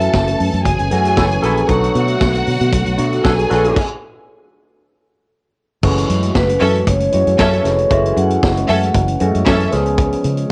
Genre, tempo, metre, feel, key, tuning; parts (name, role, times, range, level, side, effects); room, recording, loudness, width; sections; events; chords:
disco; 116 BPM; 4/4; straight; F# minor; A4 = 442 Hz
vibraphone with medium mallets; melody; 0.0-0.4, 6.4-9.2 s; B4 to F#5; -20 LUFS; equal; cassette tape, plate reverb
clear studio string section; second line; 0.0-9.7 s; C#4 to A5; -22 LUFS; equal; cassette tape, plate reverb
barky tine electric piano; accompaniment; 0.0-10.5 s; D3 to G#4; -21 LUFS; equal; overdrive, phaser, cassette tape, plate reverb
fingered electric bass; bass; 0.0-10.4 s; E#1 to C#3; -20 LUFS; equal
vintage drum kit; drums; 0.0-10.5 s; crash cymbal, hi-hat, kick drum, snare drum; -22 LUFS; equal; cassette tape
warm horn section; stabs; 1.2-3.8 s; D4 to A4; -23 LUFS; equal; cassette tape, plate reverb
light reverb; home recording on cassette; -15 LUFS; mono
0.0-5.8 A section; 5.8-10.5 B section
stop 3.8-5.8
0.0 F#m7; 1.7 Bm7; 5.8 F#m9; 9.7 C#7